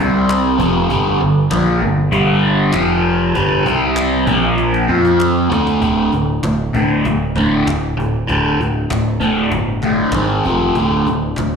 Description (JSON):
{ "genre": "garage rock duo or trio", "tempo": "98 BPM", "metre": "4/4", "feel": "straight", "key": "unclear", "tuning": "A4 = 439 Hz", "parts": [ { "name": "raw garage guitar", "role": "riff", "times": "0.0-11.6 s", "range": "D2 to F4", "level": "-14 LUFS", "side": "equal", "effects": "overdrive, phaser, slapback echo" }, { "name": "growling picked electric bass", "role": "bass", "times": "0.0-11.6 s", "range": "D1 to F2", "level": "-22 LUFS", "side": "equal", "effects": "overdrive" }, { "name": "cajon", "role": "drums", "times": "0.3-11.5 s", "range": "none", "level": "-28 LUFS", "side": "equal", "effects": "slapback echo" }, { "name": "group handclap", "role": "percussion", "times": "0.3-11.5 s", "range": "none", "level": "-30 LUFS", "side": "left 2 dB", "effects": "slapback echo" } ], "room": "light reverb", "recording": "live gig heard through the venue's PA, recital hall reverb", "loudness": "-13 LUFS", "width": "side -6 dB against mid", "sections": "0.0-5.8 A section; 5.8-11.6 B section", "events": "drum fill 4.6-5.8", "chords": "0.0 C5; 0.6 F5; 0.9 G5; 2.8 F5; 3.4 G5; 3.7 C5; 4.3 Bb5; 4.9 F5; 5.5 D5; 10.1 G#5; 10.5 F5; 10.8 D5" }